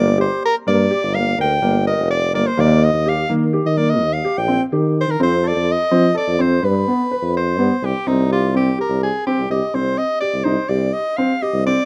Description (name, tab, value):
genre	contemporary instrumental, chamber music in an uneven meter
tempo	251 BPM (eighths)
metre	11/8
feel	straight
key	C minor from 7.8 s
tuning	A4 = 440 Hz
part	edgy soprano saxophone	melody	0.0-11.9 s	Eb4 to G5	-22 LUFS	equal	none
part	felt-muted upright piano	arpeggios	0.0-11.8 s	Bb3 to B4	-23 LUFS	equal	none
part	clear tuba	bass	0.0-11.7 s	F1 to F3	-21 LUFS	equal	none
room	light reverb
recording	dark, warm production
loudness	-18 LUFS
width	mono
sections	0.0-7.8 A section; 7.8-11.9 B section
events	none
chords	0.0 Gm; 2.6 Eb; 5.2 F; 6.6 G7; 7.8 Cm